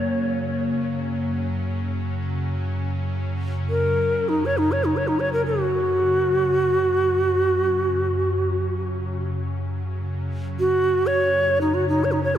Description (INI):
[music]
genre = world meditative, free-time meditation music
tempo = free time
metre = none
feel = none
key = F# major pentatonic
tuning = A4 = 440 Hz
[part]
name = low Native American-style wooden flute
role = melody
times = 0.0-12.4 s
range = D#4 to C#5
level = -21 LUFS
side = equal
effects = diffuse ambient delay
[part]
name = ethereal airy pad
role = drone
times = 0.0-12.4 s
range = F#2 to C#3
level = -26 LUFS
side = equal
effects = ensemble chorus, built-in reverb
[part]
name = glass harmonica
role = texture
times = 0.0-1.0 s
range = A#3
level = -28 LUFS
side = left 1 dB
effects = none
[sound]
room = wet huge ambient reverb, RT60 4.2 s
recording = none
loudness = -20 LUFS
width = side -10 dB against mid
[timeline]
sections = 0.0-9.3 A section; 9.3-12.4 A section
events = none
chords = none